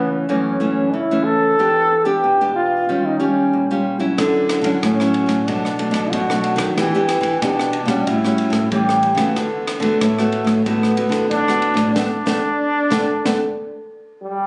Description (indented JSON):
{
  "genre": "samba and choro",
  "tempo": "93 BPM",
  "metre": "4/4",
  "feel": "straight",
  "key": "D major",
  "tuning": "A4 = 442 Hz",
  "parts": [
    { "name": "warm trombone", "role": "melody", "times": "0.0-14.5 s", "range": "G3 to A4", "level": "-22 LUFS", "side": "equal", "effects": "none" },
    { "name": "nylon-string guitar", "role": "accompaniment", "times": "0.0-13.4 s", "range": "F#2 to G4", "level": "-23 LUFS", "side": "equal", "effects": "none" },
    { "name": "nylon-string guitar", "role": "bass", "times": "4.2-13.4 s", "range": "A2 to E3", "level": "-23 LUFS", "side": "equal", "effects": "none" },
    { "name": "compact cocktail drum kit", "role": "drums", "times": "4.2-13.4 s", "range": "kick drum, ride cymbal, rim click, snare drum", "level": "-29 LUFS", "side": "equal", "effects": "none" }
  ],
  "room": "light reverb",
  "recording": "recorded on a phone in the room, club reverb, nothing above 10.4 kHz",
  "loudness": "-18 LUFS",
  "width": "mono",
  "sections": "0.0-14.5 A section",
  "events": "band accent 12.0-14.5",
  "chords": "0.0 F#m7; 1.6 Em7; 2.9 Eb9; 4.2 Dmaj9; 5.5 Bm7; 6.8 Em7; 8.1 A13; 9.4 D6"
}